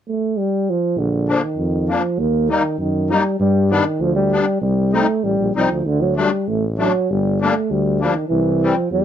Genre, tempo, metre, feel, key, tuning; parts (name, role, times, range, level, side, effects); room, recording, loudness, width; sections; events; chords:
alpine folk; 98 BPM; 2/4; straight; Bb major; A4 = 440 Hz
mellow euphonium; melody; 0.1-9.0 s; D3 to Bb3; -18 LUFS; right 2 dB
warm tuba; bass; 1.0-9.0 s; G1 to G2; -21 LUFS; equal
musette accordion; accompaniment; 1.3-8.8 s; E3 to Eb4; -19 LUFS; left 5 dB
light reverb; close, detailed microphones; -16 LUFS; side -9 dB against mid
1.0-9.0 A section
0.0 N.C.; 1.0 Bb; 2.2 Eb; 3.4 G; 4.6 Cm; 5.9 D; 7.1 Gm; 8.3 C